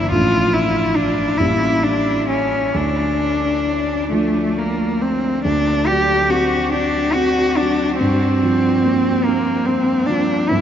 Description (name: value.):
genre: classical, romantic duo for cello and grand piano.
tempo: 43-48 BPM (dotted quarters).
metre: 6/8.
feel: rubato.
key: D minor.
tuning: A4 = 440 Hz.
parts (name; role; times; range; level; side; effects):
rich cello; melody; 0.0-10.6 s; A3 to G4; -17 LUFS; left 1 dB; none.
dark baby grand piano; accompaniment; 0.0-10.6 s; G1 to E4; -20 LUFS; right 1 dB; none.
room: wet huge ambient reverb, RT60 8.1 s.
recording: in a vast, echoing space, nothing above 7.5 kHz.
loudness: -15 LUFS.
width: side -9 dB against mid.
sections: 0.0-5.4 A section; 5.4-10.6 B section.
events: none.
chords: 0.1 Dm/A; 1.4 A7b9; 2.7 Dm; 5.4 D7; 8.0 Gm7.